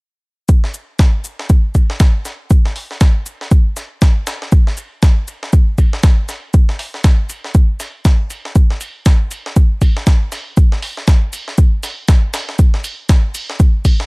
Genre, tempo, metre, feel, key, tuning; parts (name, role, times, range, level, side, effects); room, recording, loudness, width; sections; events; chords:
deep house; 119 BPM; 4/4; swing 59% on 16ths
breakbeat sampler-style drum kit; drums; 0.5-14.1 s; hi-hat, shaker, snare drum; -25 LUFS; equal; sidechain pumping on perc, high-pass filter on perc, high-pass filter on snare, sidechain pumping on hats, high-pass filter on hats
electronic kick drum; drums; 0.5-14.0 s; -10 LUFS; equal
electronic hi-hat; drums; 0.7-14.0 s; -30 LUFS; right 3 dB; overdrive, low-pass filter on hats, low-pass filter on room
digital ambience; dry, gritty hardware recording; -12 LUFS; side -34 dB against mid
0.5-14.1 A section
filter sweep on drum 0.5-14.1